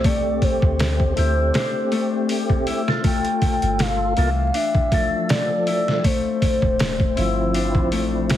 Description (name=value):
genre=trip hop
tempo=80 BPM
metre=4/4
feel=swing 54% on 16ths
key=A minor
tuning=A4 = 443 Hz
part: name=pure breathy sine lead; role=melody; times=0.0-8.3 s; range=C5 to G5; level=-24 LUFS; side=equal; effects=chorus, dub echo
part: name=percussive tonewheel organ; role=accompaniment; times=0.0-8.4 s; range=F3 to A4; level=-26 LUFS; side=equal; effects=overdrive, chorus vibrato, slow rotary speaker, harmonic tremolo, tape echo
part: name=Celtic harp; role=arpeggios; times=0.0-8.4 s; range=E3 to E4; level=-26 LUFS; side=left 8 dB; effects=digital delay
part: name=soft 808-style bass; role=bass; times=0.0-8.4 s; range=D1 to D2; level=-23 LUFS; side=equal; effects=tube saturation
part: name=trip hop sampler-style drum kit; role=drums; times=0.0-8.4 s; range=hi-hat, kick drum, snare drum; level=-22 LUFS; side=equal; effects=none
room=light reverb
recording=heavily compressed radio sound, vinyl crackle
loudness=-18 LUFS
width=side -12 dB against mid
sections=0.0-8.4 A section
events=none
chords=0.0 Am7; 3.0 G7sus2; 6.0 Dm9